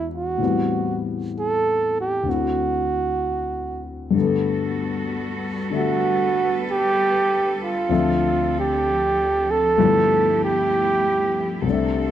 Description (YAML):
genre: jazz ballad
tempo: 64 BPM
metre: 4/4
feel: swing 69% on 8ths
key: G major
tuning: A4 = 440 Hz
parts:
  - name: warm flugelhorn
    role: melody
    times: 0.0-11.6 s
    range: F4 to A4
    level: -20 LUFS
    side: right 3 dB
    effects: none
  - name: dark concert grand piano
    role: accompaniment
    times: 0.0-12.1 s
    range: C2 to E5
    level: -24 LUFS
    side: left 6 dB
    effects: none
  - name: rich studio cello section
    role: sustained chords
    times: 4.1-12.1 s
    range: D3 to B4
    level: -29 LUFS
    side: right 1 dB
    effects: none
room: light reverb, studio reverb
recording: dry, close 1970s-style studio recording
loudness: -19 LUFS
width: side -10 dB against mid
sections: 0.0-4.2 A section; 4.2-12.1 B section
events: flugelhorn solo 4.2-12.1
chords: 0.4 Am7; 2.3 D7; 4.2 Gmaj9; 7.9 Dm7; 9.8 G13